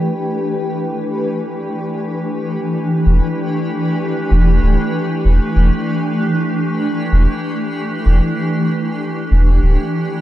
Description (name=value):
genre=ambient dub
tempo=96 BPM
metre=4/4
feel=straight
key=E minor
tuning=A4 = 439 Hz
part: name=granular cloud pad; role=sustained chords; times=0.0-10.2 s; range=E3 to B4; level=-18 LUFS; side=equal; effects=built-in reverb
part: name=soft dub sub bass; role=bass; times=3.1-9.8 s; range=D1 to E1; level=-12 LUFS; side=equal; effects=none
room=light reverb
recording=none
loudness=-15 LUFS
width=side -14 dB against mid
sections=0.0-3.1 A section; 3.1-10.2 B section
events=none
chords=0.0 Em7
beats=| 0.56 1.19 1.81 2.44 | 3.06 3.69 4.31 4.94 | 5.56 6.19 6.81 7.44 | 8.06 8.69 9.31 9.94